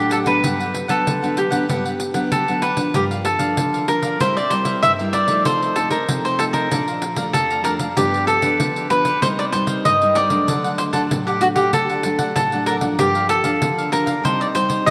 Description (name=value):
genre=samba and choro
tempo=96 BPM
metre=4/4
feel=straight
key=G minor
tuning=A4 = 440 Hz
part: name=cavaquinho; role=melody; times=0.0-14.9 s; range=F#4 to E5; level=-21 LUFS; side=equal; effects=none
part: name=cavaquinho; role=accompaniment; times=0.0-14.9 s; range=D4 to Bb5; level=-31 LUFS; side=equal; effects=none
part: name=nylon-string guitar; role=accompaniment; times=0.0-14.9 s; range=F2 to E4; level=-26 LUFS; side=equal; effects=none
part: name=pandeiro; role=percussion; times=0.1-14.9 s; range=none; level=-28 LUFS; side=equal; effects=none
room=wet plate reverb, RT60 2.8 s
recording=none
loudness=-19 LUFS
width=mono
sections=0.0-2.9 A section; 2.9-14.9 B section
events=none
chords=0.4 Gmaj7; 2.9 Gm7; 4.2 C7; 5.5 F7/C; 6.7 Bbmaj7; 8.0 G7; 9.2 Cm7; 10.5 D; 13.0 Gm7; 14.2 Cmadd9